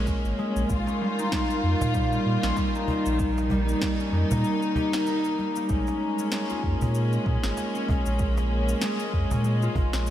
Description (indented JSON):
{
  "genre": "organic downtempo",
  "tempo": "96 BPM",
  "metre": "4/4",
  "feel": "swing 58% on 16ths",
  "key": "Bb dorian",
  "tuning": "A4 = 440 Hz",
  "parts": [
    { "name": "rich studio string section", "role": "sustained chords", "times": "0.0-10.1 s", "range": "Eb3 to F4", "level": "-30 LUFS", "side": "left 1 dB", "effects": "sidechain pumping" },
    { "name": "concert harp", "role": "arpeggios", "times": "0.0-10.1 s", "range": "G3 to G4", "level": "-28 LUFS", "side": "equal", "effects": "ping-pong delay" },
    { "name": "warm sub bass", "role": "bass", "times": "0.0-10.1 s", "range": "Ab1 to Bb2", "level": "-26 LUFS", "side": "equal", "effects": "tube saturation, sidechain pumping" },
    { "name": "electronic kick drum", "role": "drums", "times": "0.1-9.9 s", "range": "none", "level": "-29 LUFS", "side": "equal", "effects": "studio reverb" },
    { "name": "electronic shaker and snare drum", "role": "drums", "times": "0.1-10.1 s", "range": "none", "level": "-35 LUFS", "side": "equal", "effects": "studio reverb" },
    { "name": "cajon", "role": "percussion", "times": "0.4-9.9 s", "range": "none", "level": "-32 LUFS", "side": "right 1 dB", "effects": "none" }
  ],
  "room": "moderate lush hall reverb, RT60 2.2 s",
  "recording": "dreamy mix soaked in reverb",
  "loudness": "-23 LUFS",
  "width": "side -12 dB against mid",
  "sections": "0.0-5.7 A section; 5.7-10.1 A section",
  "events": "none",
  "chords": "0.0 Bbm7; 0.7 Eb7/Bb; 5.7 Bbm7",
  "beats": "0.07 | 0.70 1.32 1.95 2.57 | 3.20 3.82 4.45 5.07 | 5.70 6.32 6.95 7.57 | 8.20 8.82 9.45 10.07"
}